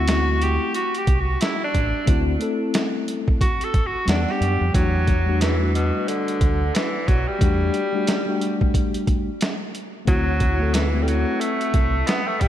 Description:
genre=hip hop, jazz-hop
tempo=90 BPM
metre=4/4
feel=swing 60% on 16ths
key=E minor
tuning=A4 = 442 Hz
part: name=clear tenor saxophone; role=melody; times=0.0-12.5 s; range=B2 to A4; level=-24 LUFS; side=equal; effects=analog delay
part: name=mellow tine electric piano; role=accompaniment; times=0.0-12.0 s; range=F#3 to F#5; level=-26 LUFS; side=left 3 dB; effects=medium stereo tremolo
part: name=deep dub fingered electric bass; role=bass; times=0.0-12.5 s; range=A1 to F#2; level=-22 LUFS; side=equal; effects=none
part: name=boom bap sampler-style drum kit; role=drums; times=0.1-12.5 s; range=hi-hat, kick drum, snare drum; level=-23 LUFS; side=equal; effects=none
room=moderate lush hall reverb, RT60 2.8 s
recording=dreamy mix soaked in reverb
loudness=-19 LUFS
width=side -11 dB against mid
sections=0.0-4.7 A section; 4.7-12.5 B section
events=tenor saxophone solo 0.0-4.7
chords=0.0 D9; 4.1 Em9; 4.7 Em11; 10.1 D9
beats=0.08 0.74 1.41 | 2.08 2.74 3.41 4.08 | 4.74 5.41 6.08 6.74 | 7.41 8.08 8.74 9.41 | 10.08 10.74 11.41 12.08

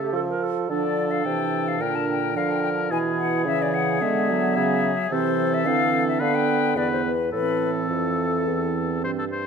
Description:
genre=quick classical-period movement for wind quintet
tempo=108 BPM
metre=4/4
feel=straight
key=A minor from 5.1 s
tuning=A4 = 441 Hz
part: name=silver concert flute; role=melody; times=0.0-9.0 s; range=A4 to A5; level=-27 LUFS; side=left 10 dB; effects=none
part: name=warm oboe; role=second line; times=0.0-9.5 s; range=G#4 to C5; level=-28 LUFS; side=left 4 dB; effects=none
part: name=clear clarinet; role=accompaniment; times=0.0-9.3 s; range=B3 to Bb4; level=-27 LUFS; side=right 10 dB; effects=none
part: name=warm French horn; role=accompaniment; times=0.0-9.3 s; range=C#3 to G#3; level=-29 LUFS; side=equal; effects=none
part: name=mellow bassoon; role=bass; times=0.0-9.5 s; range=E2 to A3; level=-27 LUFS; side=right 3 dB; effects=none
room=moderate concert hall reverb, RT60 1.8 s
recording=none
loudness=-21 LUFS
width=side -6 dB against mid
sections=0.0-9.5 A section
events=none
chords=0.0 A; 0.7 Dm; 1.8 Bb6; 2.9 E7/B; 5.1 Am/C; 6.2 G7/D; 6.8 E5; 7.3 Am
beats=0.13 | 0.69 1.25 1.80 2.36 | 2.91 3.47 4.02 4.57 | 5.12 5.66 6.20 6.76 | 7.33 7.90 8.48 9.04

